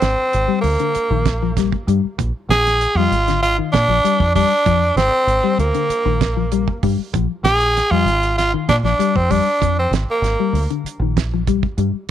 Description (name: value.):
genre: afrobeat.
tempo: 97 BPM.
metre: 4/4.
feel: straight.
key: Bb mixolydian.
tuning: A4 = 438 Hz.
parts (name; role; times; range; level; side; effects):
raspy tenor saxophone; melody; 0.0-10.7 s; Bb3 to Ab4; -17 LUFS; right 1 dB; none.
deep dub fingered electric bass; bass; 0.0-12.1 s; Ab1 to Bb2; -20 LUFS; right 1 dB; none.
damped 70s drum kit; drums; 0.0-12.1 s; hi-hat, kick drum, snare drum; -22 LUFS; right 5 dB; none.
mellow electric guitar; arpeggios; 0.5-11.9 s; D3 to G3; -21 LUFS; left 13 dB; vibrato effect.
room: light reverb.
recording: 1960s-style stereo.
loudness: -15 LUFS.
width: side -11 dB against mid.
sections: 0.0-12.1 A section.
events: none.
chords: 0.0 Bb7(no3).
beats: 0.33 0.95 1.56 | 2.18 2.80 3.42 4.04 | 4.66 5.28 5.90 6.52 | 7.14 7.76 8.38 9.00 | 9.62 10.24 10.86 11.48 | 12.10.